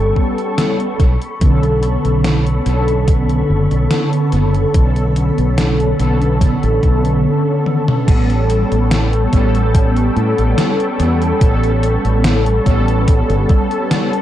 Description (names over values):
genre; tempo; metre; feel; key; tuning
vaporwave; 72 BPM; 4/4; straight; unclear; A4 = 440 Hz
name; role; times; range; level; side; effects
mellow synth brass; accompaniment; 0.0-14.2 s; D3 to A4; -16 LUFS; equal; ensemble chorus, cassette tape, analog delay
soft string machine; sustained chords; 0.0-14.2 s; A4 to C#6; -28 LUFS; equal; phaser, ensemble chorus
fretless electric bass; bass; 0.0-13.4 s; F#1 to A2; -16 LUFS; equal; tube saturation
electronic kick drum; drums; 0.2-13.7 s; none; -14 LUFS; equal; overdrive, vintage 12-bit sampler grit
gated 80s digital drum machine; drums; 0.4-14.2 s; crash cymbal, hi-hat, snare drum, toms; -21 LUFS; left 1 dB; gated reverb, gated reverb snare, overdrive, vintage 12-bit sampler grit, analog delay
room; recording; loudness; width
light reverb, digital ambience; echo-heavy mix; -12 LUFS; side -12 dB against mid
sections
0.0-8.1 A section; 8.1-14.2 B section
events
drum fill 7.7-8.1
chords
0.0 A9; 1.0 Bm9; 8.1 A9